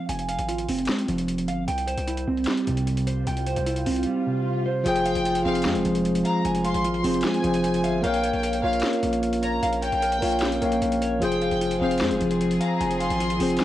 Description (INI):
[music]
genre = hip hop, trap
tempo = 151 BPM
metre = 4/4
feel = half-time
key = F harmonic minor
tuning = A4 = 440 Hz
[part]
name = mellow electric guitar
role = arpeggios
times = 0.0-13.6 s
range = C3 to Ab5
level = -26 LUFS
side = right 3 dB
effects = lush chorus, cassette tape, tape echo
[part]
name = distorted 808-style bass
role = bass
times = 0.1-13.6 s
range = F1 to F2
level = -32 LUFS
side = left 1 dB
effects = distortion
[part]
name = trap drum kit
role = drums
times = 0.1-13.6 s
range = hi-hat, snare drum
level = -33 LUFS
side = left 1 dB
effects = cassette tape
[part]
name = swell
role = sound effects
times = 3.1-4.9 s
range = none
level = -35 LUFS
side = left 3 dB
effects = none
[part]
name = mellow tine electric piano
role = accompaniment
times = 4.8-13.6 s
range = F3 to F5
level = -24 LUFS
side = left 2 dB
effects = medium stereo tremolo, cassette tape
[part]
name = clear studio violin section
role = second line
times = 4.9-13.6 s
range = F5 to C6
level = -29 LUFS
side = left 1 dB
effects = cassette tape, tape echo
[part]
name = dark studio string section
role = sustained chords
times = 11.2-13.6 s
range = F3 to Ab4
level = -32 LUFS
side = left 3 dB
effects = cassette tape
[sound]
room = moderate spring reverb, RT60 2.1 s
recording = home recording on cassette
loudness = -22 LUFS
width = side -13 dB against mid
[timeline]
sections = 0.0-4.9 A section; 4.9-13.6 B section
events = swell 3.1-4.9; silent gap 4.1-4.9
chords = 0.0 Fm; 1.7 C; 4.9 Fm; 8.0 Bbm; 11.2 Fm